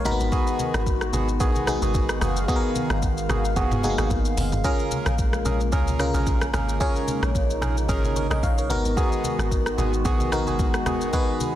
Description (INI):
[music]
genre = amapiano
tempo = 111 BPM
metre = 4/4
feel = swing 55% on 16ths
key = unclear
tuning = A4 = 441 Hz
[part]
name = FM electric piano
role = accompaniment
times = 0.0-11.6 s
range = Bb3 to Cb6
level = -28 LUFS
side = left 2 dB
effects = chorus
[part]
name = hollow soft pad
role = sustained chords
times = 0.0-11.6 s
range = Db3 to F5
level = -31 LUFS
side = equal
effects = chorus, sidechain pumping
[part]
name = deep log drum bass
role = bass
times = 0.0-11.1 s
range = Gb1 to Db2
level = -26 LUFS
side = equal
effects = none
[part]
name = afro-pop drum kit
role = drums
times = 0.1-11.5 s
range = hi-hat, kick drum, rim click, shaker, toms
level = -26 LUFS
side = equal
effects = soft clipping on snare
[part]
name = congas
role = percussion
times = 0.1-11.5 s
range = none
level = -33 LUFS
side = left 2 dB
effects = none
[part]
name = percussive organ stab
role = stabs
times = 0.3-11.6 s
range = Cb4 to Bb4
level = -29 LUFS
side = right 3 dB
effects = chorus, digital delay
[sound]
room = light reverb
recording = dense, heavily limited modern master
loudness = -21 LUFS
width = side -12 dB against mid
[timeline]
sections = 0.0-11.6 A section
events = FM electric piano fill 0.0-0.3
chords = 0.1 Abm7; 4.6 Bbm7; 8.7 Abm7